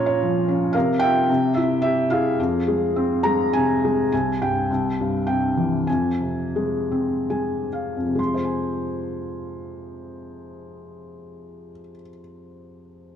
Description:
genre	classical, lyrical solo piano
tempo	61-113 BPM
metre	3/4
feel	rubato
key	F harmonic minor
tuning	A4 = 440 Hz
part	felt-muted upright piano	solo	0.0-13.2 s	C2 to C6	-21 LUFS	equal	none
room	moderate scoring stage reverb, RT60 2.1 s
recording	dark, warm production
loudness	-20 LUFS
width	side -8 dB against mid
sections	0.0-4.1 A section; 4.1-8.2 B section; 8.2-13.2 C section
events	slowing down 4.1-8.2; felt piano fill 6.9-8.2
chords	0.0 Bbm; 0.7 C7sus4; 1.3 C; 2.4 Fm; 4.1 C5; 4.7 C; 5.9 Fm

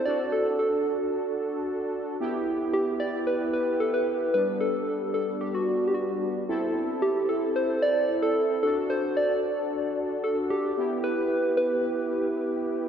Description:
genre	pop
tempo	112 BPM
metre	4/4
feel	straight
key	E minor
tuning	A4 = 440 Hz
part	soft struck synth lead	melody	0.0-12.9 s	F#4 to D5	-26 LUFS	equal	chorus, tape echo
part	analog synth brass	accompaniment	0.1-12.9 s	G3 to A4	-28 LUFS	equal	chorus
room	wet lush hall reverb, RT60 2.6 s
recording	dreamy mix soaked in reverb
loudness	-24 LUFS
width	side -8 dB against mid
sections	0.0-10.8 A section; 10.8-12.9 B section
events	none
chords	0.1 D; 2.2 Em; 4.3 G; 6.5 Am; 8.6 D; 10.8 Em

